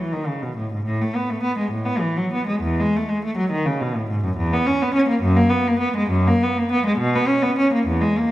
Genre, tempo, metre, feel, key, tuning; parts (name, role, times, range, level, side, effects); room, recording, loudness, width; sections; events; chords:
classical, baroque-style suite movement for unaccompanied cello; 69 BPM (dotted quarters); 6/8; rubato; E major; A4 = 440 Hz
rich cello; solo; 0.0-8.3 s; E2 to C#4; -18 LUFS; equal
wet recital hall reverb, RT60 1.6 s; -18 LUFS; side -15 dB against mid
0.0-8.3 A section